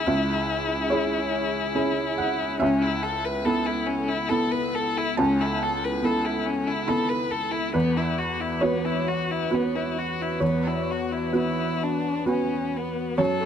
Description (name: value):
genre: neoclassical piano and strings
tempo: 64-72 BPM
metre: 3/4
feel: rubato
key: unclear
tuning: A4 = 440 Hz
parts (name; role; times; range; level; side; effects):
- rich violin; melody; 0.0-13.5 s; B3 to B4; -27 LUFS; left 4 dB; none
- felt-muted upright piano; accompaniment; 0.0-13.5 s; C#2 to B5; -25 LUFS; right 1 dB; none
- warbly tape-like pad; sustained chords; 0.0-13.5 s; B3 to B4; -33 LUFS; equal; chorus, built-in reverb
room: light reverb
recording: close, detailed microphones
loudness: -23 LUFS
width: side -8 dB against mid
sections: 0.0-13.2 A section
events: none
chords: 0.0 C#m; 2.6 Aadd9/C#; 7.7 Esus2